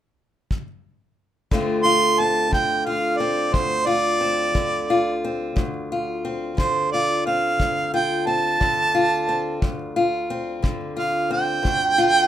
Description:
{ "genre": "acoustic country blues, solo or duo", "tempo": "59 BPM (dotted quarters)", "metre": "12/8", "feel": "straight", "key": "D minor", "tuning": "A4 = 439 Hz", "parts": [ { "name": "kick drum", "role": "drums", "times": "0.5-11.8 s", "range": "none", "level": "-24 LUFS", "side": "left 1 dB", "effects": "none" }, { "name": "fingerpicked steel-string acoustic guitar", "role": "accompaniment", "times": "1.5-12.3 s", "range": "D2 to F4", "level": "-23 LUFS", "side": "left 2 dB", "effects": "none" }, { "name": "warm harmonica", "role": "melody", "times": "1.8-12.3 s", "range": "C5 to C6", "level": "-20 LUFS", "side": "right 3 dB", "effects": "none" } ], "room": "moderate studio ambience, RT60 0.5 s", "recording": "minimal, uncompressed stereo recording", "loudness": "-19 LUFS", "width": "side -11 dB against mid", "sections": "0.0-1.5 A section; 1.5-12.3 B section", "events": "none", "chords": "0.0 N.C.; 1.5 Dm7" }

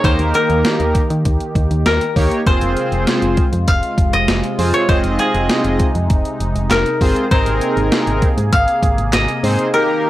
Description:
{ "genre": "synth-pop", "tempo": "99 BPM", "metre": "4/4", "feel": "straight", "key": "F minor", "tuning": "A4 = 440 Hz", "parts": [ { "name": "koto", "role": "melody", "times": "0.0-10.1 s", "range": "Ab4 to F5", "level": "-19 LUFS", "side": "left 2 dB", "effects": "none" }, { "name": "analog synth brass", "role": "accompaniment", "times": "0.0-10.1 s", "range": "Bb3 to Eb5", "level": "-19 LUFS", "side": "right 1 dB", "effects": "chorus" }, { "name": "sweeping resonant pad", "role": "sustained chords", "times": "0.0-10.1 s", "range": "C3 to G5", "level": "-23 LUFS", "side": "equal", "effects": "chorus, phaser" }, { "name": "solid FM bass", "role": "bass", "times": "0.0-9.6 s", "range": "F1 to Eb3", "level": "-19 LUFS", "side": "equal", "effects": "none" }, { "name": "gated 80s digital drum machine", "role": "drums", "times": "0.0-9.7 s", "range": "handclaps, hi-hat, kick drum, snare drum", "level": "-17 LUFS", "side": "equal", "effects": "gated reverb, gated reverb snare" } ], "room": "little or no reverb", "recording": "dry, gritty hardware recording", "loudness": "-13 LUFS", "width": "side -15 dB against mid", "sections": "0.0-10.1 A section", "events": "none", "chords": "0.0 Eb; 2.5 Fm; 7.3 Abadd9" }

